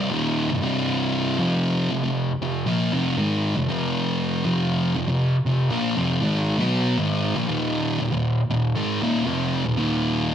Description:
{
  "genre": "metal",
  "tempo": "79 BPM",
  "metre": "4/4",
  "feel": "swing 66% on 8ths",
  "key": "unclear",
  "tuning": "A4 = 439 Hz",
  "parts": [
    { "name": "thick fuzz guitar", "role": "solo", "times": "0.0-10.3 s", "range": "C2 to B3", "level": "-20 LUFS", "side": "equal", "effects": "distortion, slapback echo" }
  ],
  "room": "wet large studio reverb, RT60 0.9 s",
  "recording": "none",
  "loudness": "-20 LUFS",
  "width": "side -9 dB against mid",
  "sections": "0.0-10.3 A section",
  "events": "none",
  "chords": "0.0 Cm; 1.4 F5; 7.5 Eb5",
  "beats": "0.63 | 1.39 2.15 2.92 3.68 | 4.44 5.21 5.97 6.73 | 7.49 8.25 9.01 9.78"
}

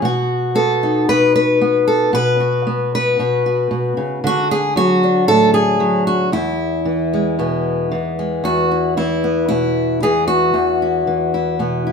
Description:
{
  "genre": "folk, solo fingerstyle acoustic guitar",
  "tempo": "114 BPM",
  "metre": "4/4",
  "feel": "straight",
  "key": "E major",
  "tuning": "A4 = 436 Hz",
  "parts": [
    { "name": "fingerpicked steel-string acoustic guitar", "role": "solo", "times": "0.0-11.9 s", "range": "E2 to B4", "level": "-14 LUFS", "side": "left 1 dB", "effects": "none" }
  ],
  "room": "wet large studio reverb, RT60 1.0 s",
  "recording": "band playing live in one room",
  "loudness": "-14 LUFS",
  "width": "side -5 dB against mid",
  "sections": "0.0-8.5 A section; 8.5-11.9 B section",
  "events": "none",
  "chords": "0.1 B; 4.2 D; 6.3 E; 8.5 Esus2",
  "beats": "| 0.05 0.58 1.10 1.63 | 2.15 2.67 3.19 3.72 | 4.24 4.76 5.28 5.80 | 6.33 6.86 7.39 7.92 | 8.45 8.98 9.51 10.03 | 10.56 11.08 11.61"
}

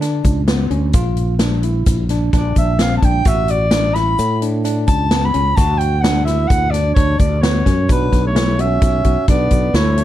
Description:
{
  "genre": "progressive instrumental, band music in an uneven meter",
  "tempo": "129 BPM",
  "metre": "5/4",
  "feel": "straight",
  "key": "D major",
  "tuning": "A4 = 441 Hz",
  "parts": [
    { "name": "tine electric piano", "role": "arpeggios", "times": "0.0-10.0 s", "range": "B3 to F#4", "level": "-23 LUFS", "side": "equal", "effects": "slow stereo tremolo" },
    { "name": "sustaining fretless electric bass", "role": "bass", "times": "0.0-10.0 s", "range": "A1 to D3", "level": "-18 LUFS", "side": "equal", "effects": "none" },
    { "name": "swinging big-band drum kit", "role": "drums", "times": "0.0-10.0 s", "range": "hi-hat, kick drum, snare drum", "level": "-18 LUFS", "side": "equal", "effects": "none" },
    { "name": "egg shaker", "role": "percussion", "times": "0.0-10.0 s", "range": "none", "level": "-39 LUFS", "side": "right 5 dB", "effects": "none" },
    { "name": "mellow soprano saxophone", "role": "melody", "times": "2.3-10.0 s", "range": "B4 to B5", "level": "-19 LUFS", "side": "equal", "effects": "none" },
    { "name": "clear trombone", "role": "second line", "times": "7.9-10.0 s", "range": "F#3 to C#4", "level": "-23 LUFS", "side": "right 2 dB", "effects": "none" }
  ],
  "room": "little or no reverb",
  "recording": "dark, warm production",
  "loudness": "-13 LUFS",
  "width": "side -13 dB against mid",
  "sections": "0.0-7.9 A section; 7.9-10.0 B section",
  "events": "soprano saxophone solo 0.0-7.9",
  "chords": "0.0 Dmaj7(no3); 0.9 Bb; 3.3 Dmaj7/A; 5.6 Dmaj7; 7.9 Bm9",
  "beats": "0.01 0.48 | 0.94 1.41 1.87 2.33 2.80 | 3.26 3.72 4.19 4.65 5.12 | 5.58 6.04 6.51 6.97 7.43 | 7.89 8.36 8.82 9.28 9.75"
}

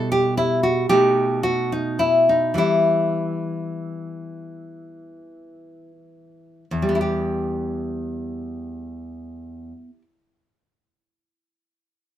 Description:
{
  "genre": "romantic piece for solo classical guitar",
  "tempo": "26-40 BPM (dotted quarters)",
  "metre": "6/8",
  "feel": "rubato",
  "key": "E minor",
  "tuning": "A4 = 441 Hz",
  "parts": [
    { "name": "nylon-string guitar", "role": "solo", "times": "0.0-10.0 s", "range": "E2 to A4", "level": "-20 LUFS", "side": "equal", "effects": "none" }
  ],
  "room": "light reverb",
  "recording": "minimal, uncompressed stereo recording",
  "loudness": "-19 LUFS",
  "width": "side -11 dB against mid",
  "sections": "0.0-6.7 A section; 6.7-11.0 B section",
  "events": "slowing down 0.0-6.7",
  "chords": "0.0 Em/B; 0.9 B7; 2.6 Em",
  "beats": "0.90 | 2.59 4.49 | 6.70 8.81"
}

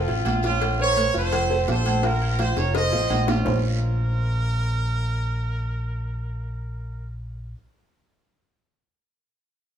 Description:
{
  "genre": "latin, salsa",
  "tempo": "168 BPM",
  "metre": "4/4",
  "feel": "straight",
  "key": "Bb harmonic minor",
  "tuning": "A4 = 437 Hz",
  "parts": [
    { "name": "bright horn section", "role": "melody", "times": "0.0-7.1 s", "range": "C4 to Eb5", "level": "-26 LUFS", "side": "right 2 dB", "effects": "none" },
    { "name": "dark baby grand piano", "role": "accompaniment", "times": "0.0-7.5 s", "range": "F3 to F5", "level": "-29 LUFS", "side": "right 1 dB", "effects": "none" },
    { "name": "fingered electric bass", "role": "bass", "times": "0.0-7.5 s", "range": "F1 to Bb1", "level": "-25 LUFS", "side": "equal", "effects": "none" },
    { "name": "agogo bells and timbales", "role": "percussion", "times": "0.1-3.5 s", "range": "none", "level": "-30 LUFS", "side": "right 4 dB", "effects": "none" },
    { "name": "congas", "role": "percussion", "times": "0.1-3.5 s", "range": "none", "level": "-33 LUFS", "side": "left 1 dB", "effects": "none" },
    { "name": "guiro", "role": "percussion", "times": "0.2-3.5 s", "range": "none", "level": "-40 LUFS", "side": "right 7 dB", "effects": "none" },
    { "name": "cowbell and bongos", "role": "percussion", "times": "0.3-3.5 s", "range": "none", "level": "-32 LUFS", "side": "left 4 dB", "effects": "none" }
  ],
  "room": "light reverb",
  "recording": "small room ambience",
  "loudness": "-21 LUFS",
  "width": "side -9 dB against mid",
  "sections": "0.0-3.5 A section; 3.5-6.3 B section",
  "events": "drum fill 2.6-3.5",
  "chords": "0.0 F; 2.0 Bb5; 2.7 F7; 3.5 Bbmadd9",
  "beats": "0.25 | 0.61 0.97 1.32 1.68 | 2.04 2.39 2.75 3.10 | 3.46 3.82 4.17 4.53 | 4.88 5.24 5.60 5.95"
}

